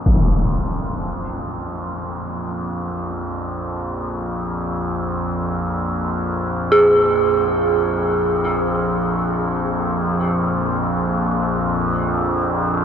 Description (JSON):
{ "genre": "dark ambient drone", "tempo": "free time", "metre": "none", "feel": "none", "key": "Bb minor", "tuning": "A4 = 440 Hz", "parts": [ { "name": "dark detuned synth bell", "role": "arpeggios", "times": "0.0-12.8 s", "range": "Db4 to Ab4", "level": "-19 LUFS", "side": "right 2 dB", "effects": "chorus, diffuse ambient delay" }, { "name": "overtone-sweeping drone", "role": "drone", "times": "0.0-12.8 s", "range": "Bb1 to F2", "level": "-21 LUFS", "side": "equal", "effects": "chorus, built-in reverb" } ], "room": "wet huge ambient reverb, RT60 7.9 s", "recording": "none", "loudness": "-18 LUFS", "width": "side -8 dB against mid", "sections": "0.0-12.8 A section", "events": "fade-in on synth drone 0.0-12.8", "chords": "0.0 Bbm7" }